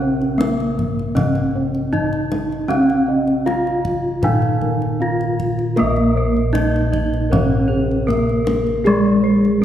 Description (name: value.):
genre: Javanese gamelan.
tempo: 78 BPM.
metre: 4/4.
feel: straight.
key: Bb slendro.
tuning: A4 = 440 Hz.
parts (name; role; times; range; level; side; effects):
gamelan-type bronze metallophone; melody; 0.0-9.6 s; Ab3-25c to F4; -20 LUFS; equal; none.
gamelan-type bronze metallophone; accompaniment; 0.0-9.6 s; Db3-45c to Bb3; -24 LUFS; right 1 dB; none.
gamelan-type bossed gongs; arpeggios; 0.0-9.6 s; Ab4-25c to F5; -26 LUFS; left 1 dB; none.
gamelan-type bossed gongs; bass; 0.0-9.6 s; Bb1 to Bb4; -22 LUFS; equal; none.
kendang; percussion; 0.2-9.5 s; none; -25 LUFS; left 2 dB; none.
gamelan-type bronze metallophone; arpeggios; 5.8-9.6 s; Ab4-25c to Eb5; -25 LUFS; equal; slapback echo.
room: wet concert hall reverb, RT60 2.1 s.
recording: heard from further back in the room, lossy compression artefacts.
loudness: -16 LUFS.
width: side -10 dB against mid.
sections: 0.0-5.8 A section; 5.8-9.6 A section.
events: none.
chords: none.